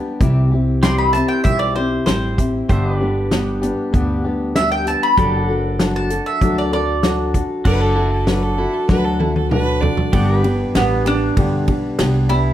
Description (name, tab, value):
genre	honky-tonk and classic country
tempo	97 BPM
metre	4/4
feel	straight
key	G major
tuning	A4 = 438 Hz
part	picked steel-string acoustic guitar	accompaniment	0.0-12.5 s	G2 to A4	-20 LUFS	left 2 dB	none
part	pedal steel guitar	sustained chords	0.0-12.5 s	F#4 to E5	-28 LUFS	right 2 dB	none
part	upright bass	bass	0.2-12.5 s	F#1 to D2	-21 LUFS	right 1 dB	none
part	natural country drum kit	drums	0.2-12.4 s	crash cymbal, hi-hat, kick drum, ride cymbal, snare drum, toms	-20 LUFS	equal	none
part	mandolin	melody	0.8-12.5 s	B3 to C6	-20 LUFS	right 1 dB	none
part	bright fiddle	second line	7.7-10.1 s	E4 to D5	-24 LUFS	right 5 dB	none
room	moderate large studio reverb, RT60 1.2 s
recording	none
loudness	-15 LUFS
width	side -12 dB against mid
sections	0.0-7.7 A section; 7.7-10.1 B section; 10.1-12.5 C section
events	mandolin solo 0.0-7.7; drum fill 8.9-10.1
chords	0.2 C; 2.7 G; 5.2 D/F#; 10.1 G